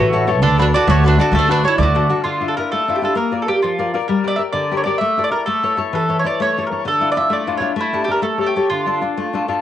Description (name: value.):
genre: italian folk, Italian serenade.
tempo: 130 BPM (dotted quarters).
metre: 6/8.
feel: straight.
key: D harmonic minor.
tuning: A4 = 441 Hz.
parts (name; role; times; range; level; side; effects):
mandolin; melody; 0.0-9.4 s; E4 to E5; -18 LUFS; right 2 dB; cassette tape.
bowl-back mandolin; second line; 0.0-2.1 s; A3 to F#4; -22 LUFS; right 7 dB; cassette tape.
nylon-string guitar; accompaniment; 0.0-9.6 s; D3 to D5; -19 LUFS; left 5 dB; cassette tape.
upright bass; bass; 0.0-2.1 s; A1 to D2; -16 LUFS; right 2 dB; none.
room: wet studio reverb, RT60 0.5 s.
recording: home recording on cassette.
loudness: -15 LUFS.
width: side -11 dB against mid.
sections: 0.0-2.2 A section; 2.2-9.6 B section.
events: none.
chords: 0.4 D; 2.2 Dmadd9; 3.2 Bb; 4.1 Gm; 5.0 Asus4; 5.5 A; 6.9 Dmadd9; 7.8 A7sus4; 8.2 A7; 8.7 Dm.